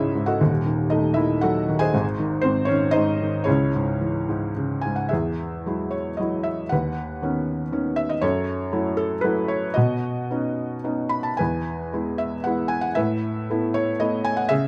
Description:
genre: classical, lyrical solo piano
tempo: 104-123 BPM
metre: 3/4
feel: rubato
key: C# minor, E major from 5.1 s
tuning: A4 = 439 Hz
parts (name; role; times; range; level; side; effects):
- felt-muted upright piano; solo; 0.0-14.7 s; D#1 to B5; -24 LUFS; equal; none
room: light reverb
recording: close, detailed microphones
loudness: -24 LUFS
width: mono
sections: 0.0-5.1 A section; 5.1-14.7 B section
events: none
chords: 0.4 D#dim; 1.9 G#; 3.5 C#m; 5.1 Eadd9; 6.7 Badd9/D#; 8.2 F#m7; 9.8 Badd9; 11.4 E; 13.0 Asus2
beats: | 0.41 0.92 1.43 | 1.94 2.45 2.95 | 3.47 4.00 4.56 | 5.12 5.66 6.20 | 6.71 7.22 7.72 | 8.23 8.73 9.24 | 9.77 10.29 10.84 | 11.40 11.94 12.46 | 12.98 13.50 14.01 | 14.51

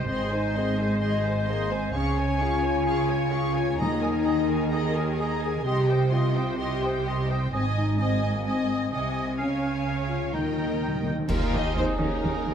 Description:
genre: cinematic, heroic adventure film score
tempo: 128 BPM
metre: 4/4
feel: straight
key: Eb mixolydian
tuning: A4 = 440 Hz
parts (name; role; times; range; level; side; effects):
- warm symphonic violin section; melody; 0.0-12.5 s; Bb4 to Db6; -36 LUFS; left 2 dB; none
- clear oboe; second line; 0.0-11.2 s; C5 to G5; -37 LUFS; equal; none
- mellow silver concert flute; second line; 0.0-12.4 s; Db4 to Bb5; -35 LUFS; left 1 dB; none
- warm symphonic violin section; second line; 0.0-12.5 s; Bb3 to Ab5; -36 LUFS; left 2 dB; none
- clear symphonic viola section; accompaniment; 0.0-12.5 s; Eb4 to Eb5; -34 LUFS; right 1 dB; none
- clear symphonic double bass section; bass; 0.0-12.5 s; Ab1 to Eb2; -30 LUFS; right 3 dB; none
- rich symphonic cello section; bass; 0.0-12.5 s; Ab2 to Eb3; -31 LUFS; right 2 dB; none
- dark French horn section; sustained chords; 0.1-12.5 s; Ab3 to Bb4; -29 LUFS; left 4 dB; none
- timpani; percussion; 3.8-4.5, 10.3-12.0 s; Eb3; -33 LUFS; left 1 dB; none
- dark trumpet; stabs; 11.3-12.5 s; Ab4; -34 LUFS; right 4 dB; none
- clear tuba; bass; 11.3-12.5 s; Eb2; -35 LUFS; right 4 dB; none
- clash cymbals and concert bass drum; percussion; 11.3-12.2 s; none; -30 LUFS; equal; none
room: moderate scoring stage reverb, RT60 1.5 s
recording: dark, warm production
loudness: -23 LUFS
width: side -8 dB against mid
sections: 0.0-11.3 A section; 11.3-12.5 A section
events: timpani fill 10.3-11.3; band accent 11.3-11.8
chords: 0.1 Ab; 1.9 Db; 3.8 Ebsus4; 5.7 Cm; 7.5 Ab; 9.4 Db; 10.3 Eb; 11.3 Ebsus4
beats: | 0.07 0.54 1.00 1.47 | 1.93 2.40 2.86 3.33 | 3.79 4.26 4.72 5.19 | 5.66 6.12 6.59 7.06 | 7.53 7.99 8.46 8.93 | 9.40 9.87 10.34 10.82 | 11.29 11.76 12.23

